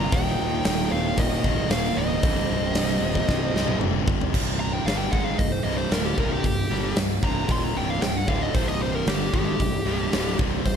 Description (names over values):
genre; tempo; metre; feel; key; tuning
hard rock; 114 BPM; 4/4; straight; C minor; A4 = 437 Hz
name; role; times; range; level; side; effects
smooth overdriven lead guitar; melody; 0.0-10.8 s; G4 to C6; -29 LUFS; left 1 dB; none
octave-fuzz lead guitar; second line; 0.0-3.8 s; Bb3 to F4; -35 LUFS; right 2 dB; distortion, slapback echo, tape echo
cranked stack guitar; riff; 0.0-10.8 s; C2 to Ab3; -29 LUFS; right 10 dB; overdrive
heavy high-gain guitar; riff; 0.0-10.8 s; C2 to Ab3; -31 LUFS; left 12 dB; distortion
fuzz fingered electric bass; bass; 0.0-10.8 s; C1 to Ab1; -29 LUFS; equal; overdrive
huge arena drum kit; drums; 0.1-10.8 s; crash cymbal, hi-hat, kick drum, snare drum, toms; -25 LUFS; equal; none
room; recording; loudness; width
light reverb, small room ambience; lossy compression artefacts; -21 LUFS; side -7 dB against mid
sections
0.0-4.3 A section; 4.3-10.8 B section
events
drum fill 3.3-4.3; lead electric guitar solo 4.3-10.8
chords
0.1 Eb; 2.2 Cm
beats
| 0.14 0.66 1.19 1.71 | 2.24 2.76 3.29 3.81 | 4.34 4.87 5.39 5.92 | 6.45 6.97 7.50 8.03 | 8.55 9.08 9.61 10.13 | 10.66